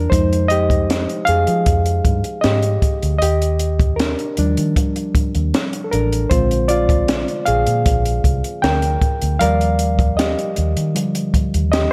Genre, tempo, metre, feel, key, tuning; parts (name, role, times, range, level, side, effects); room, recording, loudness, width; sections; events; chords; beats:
lush 1970s-style soul; 78 BPM; 4/4; straight; Eb major; A4 = 441 Hz
barky reed electric piano; accompaniment; 0.0-11.9 s; D3 to G5; -21 LUFS; equal; overdrive
vintage muted fingered electric bass; bass; 0.0-11.9 s; A1 to F3; -22 LUFS; equal
compact cocktail drum kit; drums; 0.1-11.9 s; hi-hat, kick drum, snare drum; -21 LUFS; equal
little or no reverb; -18 LUFS; mono
0.0-11.9 A section
reed electric piano solo 0.0-11.9
0.1 Fm9; 3.2 Ebmaj9; 6.3 Bb7; 9.4 Ebmaj9
| 0.12 0.89 1.66 2.44 | 3.21 3.99 4.76 5.53 | 6.31 7.08 7.86 8.63 | 9.41 10.18 10.96 11.73